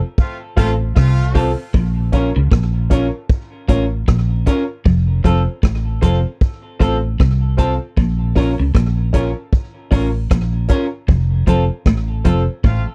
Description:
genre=roots reggae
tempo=77 BPM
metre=4/4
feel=swing 58% on 16ths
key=Bb harmonic minor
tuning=A4 = 440 Hz
part: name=clear horn section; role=second line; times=0.2-1.5, 12.6-12.8 s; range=A3 to F4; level=-31 LUFS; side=equal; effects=dub echo
part: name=vintage drum kit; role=drums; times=0.2-12.9 s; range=hi-hat, kick drum, rim click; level=-17 LUFS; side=equal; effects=none
part: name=semi-hollow electric guitar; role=accompaniment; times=0.6-12.4 s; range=C4 to Bb4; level=-27 LUFS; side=equal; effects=dub echo
part: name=clean electric guitar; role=riff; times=0.6-12.8 s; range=F2 to Db3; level=-25 LUFS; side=equal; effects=subtle chorus
part: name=bright upright piano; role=stabs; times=0.6-12.4 s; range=C4 to Db5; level=-26 LUFS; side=equal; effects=none
part: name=vintage muted fingered electric bass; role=bass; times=0.6-12.8 s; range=F1 to Db2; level=-19 LUFS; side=equal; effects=none
room=little or no reverb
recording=dry, close 1970s-style studio recording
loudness=-17 LUFS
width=mono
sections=0.0-1.7 A section; 1.7-12.9 A section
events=band accent 0.0-1.7, 11.1-12.9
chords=0.0 F; 1.7 Bbm; 4.9 F; 8.0 Bbm; 11.1 F

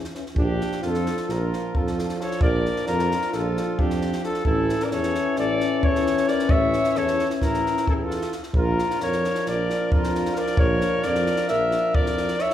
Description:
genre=balkan folk, Balkan brass band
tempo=264 BPM (eighths)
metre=9/8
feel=straight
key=unclear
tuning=A4 = 440 Hz
part: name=clear euphonium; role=accompaniment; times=0.0-12.5 s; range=E3 to F3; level=-32 LUFS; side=right 3 dB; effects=none
part: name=mellow tuba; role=bass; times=0.0-12.3 s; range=A1 to F2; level=-28 LUFS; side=right 1 dB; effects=none
part: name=compact cocktail drum kit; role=percussion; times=0.0-12.5 s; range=kick drum, snare drum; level=-27 LUFS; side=equal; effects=none
part: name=mellow euphonium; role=accompaniment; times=0.1-12.5 s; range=C#4 to D4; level=-30 LUFS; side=left 8 dB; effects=none
part: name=warm flugelhorn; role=melody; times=0.4-12.5 s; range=G4 to E5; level=-25 LUFS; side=left 2 dB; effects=none
part: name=warm alto saxophone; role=second line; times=0.4-12.5 s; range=D4 to C#5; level=-29 LUFS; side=right 2 dB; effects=none
room=wet recital hall reverb, RT60 1.4 s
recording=recorded in a church or concert hall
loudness=-20 LUFS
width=side -11 dB against mid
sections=0.4-12.5 A section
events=none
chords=0.4 Bb; 4.5 A; 8.5 Bb

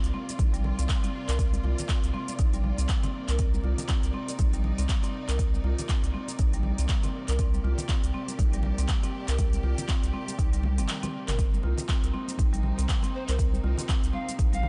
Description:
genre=afro house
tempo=120 BPM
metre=4/4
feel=swing 58% on 16ths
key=C minor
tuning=A4 = 440 Hz
part: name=clear studio string section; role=sustained chords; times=0.0-14.7 s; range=C3 to D5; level=-43 LUFS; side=equal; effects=sidechain pumping
part: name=round analog bass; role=bass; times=0.0-14.7 s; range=G1 to C2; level=-30 LUFS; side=equal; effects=sidechain pumping
part: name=deep house drum kit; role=drums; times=0.0-14.6 s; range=handclaps, hi-hat, shaker, toms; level=-39 LUFS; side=equal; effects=none
part: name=marimba with medium mallets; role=arpeggios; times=0.1-14.6 s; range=G3 to Bb4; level=-38 LUFS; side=equal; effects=sidechain pumping, tape echo
part: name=congas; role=percussion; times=0.1-14.7 s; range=none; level=-42 LUFS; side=equal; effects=none
part: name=electronic kick drum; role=drums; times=0.4-14.5 s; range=none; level=-29 LUFS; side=equal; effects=none
part: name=breathy bright pan flute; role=melody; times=13.1-14.7 s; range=C5 to F5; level=-39 LUFS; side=equal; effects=none
room=studio reverb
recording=nothing above 10.3 kHz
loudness=-27 LUFS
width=mono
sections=0.0-14.7 A section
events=drum fill 10.6-11.4; break 10.9-11.4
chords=0.0 Cm9

